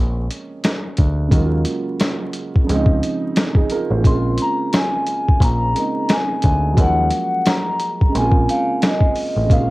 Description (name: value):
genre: lo-fi hip hop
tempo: 88 BPM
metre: 4/4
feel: swing 56% on 16ths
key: Bb minor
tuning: A4 = 442 Hz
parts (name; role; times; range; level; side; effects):
- dark upright piano; accompaniment; 0.0-9.7 s; C3 to C5; -23 LUFS; right 3 dB; cassette tape
- deep dub picked electric bass; bass; 0.0-9.7 s; A1 to Eb2; -19 LUFS; equal; tube saturation
- boom bap sampler-style drum kit; drums; 0.3-9.7 s; hi-hat, kick drum, snare drum; -17 LUFS; equal; cassette tape
- vibraphone with soft mallets; melody; 4.1-9.7 s; Eb5 to C6; -20 LUFS; left 1 dB; cassette tape, plate reverb
room: light reverb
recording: home recording on cassette, vinyl crackle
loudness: -15 LUFS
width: side -20 dB against mid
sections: 0.0-9.5 A section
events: break 0.0-4.0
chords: 0.0 Bbm7; 1.3 Ebm11; 2.7 Dbmaj7; 4.0 Bbm7; 6.8 Ebm11; 8.1 Bbm7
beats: 0.64 | 1.32 2.00 2.68 3.36 | 4.04 4.73 5.41 6.09 | 6.77 7.46 8.14 8.82 | 9.50